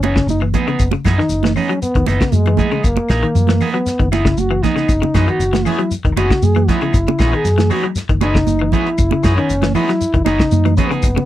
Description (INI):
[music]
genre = afrobeat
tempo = 117 BPM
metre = 4/4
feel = straight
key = F# mixolydian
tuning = A4 = 442 Hz
[part]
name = trombone with bucket mute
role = melody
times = 0.0-11.3 s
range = G#3 to G#4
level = -19 LUFS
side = equal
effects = none
[part]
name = electric guitar at the edge of break-up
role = arpeggios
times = 0.0-11.3 s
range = C#3 to F#3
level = -22 LUFS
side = left 6 dB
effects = none
[part]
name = electric guitar at the edge of break-up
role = stabs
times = 0.0-11.1 s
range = E3 to G#4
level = -23 LUFS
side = right 5 dB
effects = none
[part]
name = hollow-body short-scale fingered electric bass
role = bass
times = 0.0-11.2 s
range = E1 to F#2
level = -17 LUFS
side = equal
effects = none
[part]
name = warm soul drum kit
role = drums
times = 0.0-11.3 s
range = hi-hat, kick drum, snare drum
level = -18 LUFS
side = equal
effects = none
[part]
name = claves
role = percussion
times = 0.0-11.2 s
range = none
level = -32 LUFS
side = left 18 dB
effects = none
[part]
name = congas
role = percussion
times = 0.0-11.3 s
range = none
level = -21 LUFS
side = right 13 dB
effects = none
[part]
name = shekere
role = percussion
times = 0.0-11.2 s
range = none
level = -25 LUFS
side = left 2 dB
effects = none
[part]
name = combo organ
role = accompaniment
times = 5.1-10.9 s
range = G#3 to B4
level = -25 LUFS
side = left 13 dB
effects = none
[sound]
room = little or no reverb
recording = dry, close 1970s-style studio recording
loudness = -13 LUFS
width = side -13 dB against mid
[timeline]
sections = 0.0-11.3 A section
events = none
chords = 0.0 F#13sus4